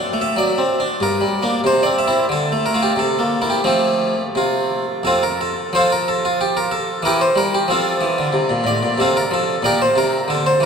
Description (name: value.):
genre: classical, baroque-style suite movement for harpsichord.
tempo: 86-94 BPM.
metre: 3/4.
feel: rubato.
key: F major.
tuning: A4 = 443 Hz.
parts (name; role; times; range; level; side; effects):
harpsichord; solo; 0.0-10.7 s; F2 to F#5; -16 LUFS; equal; none.
room: wet cathedral reverb, RT60 6.7 s.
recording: none.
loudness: -16 LUFS.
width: side -6 dB against mid.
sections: 0.0-5.7 A section; 5.7-10.7 B section.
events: none.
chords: 0.0 D7; 1.0 Gm; 1.7 C; 2.3 Dm; 3.0 C7; 3.7 F; 7.0 Edim; 7.7 F; 9.6 Gm/Bb.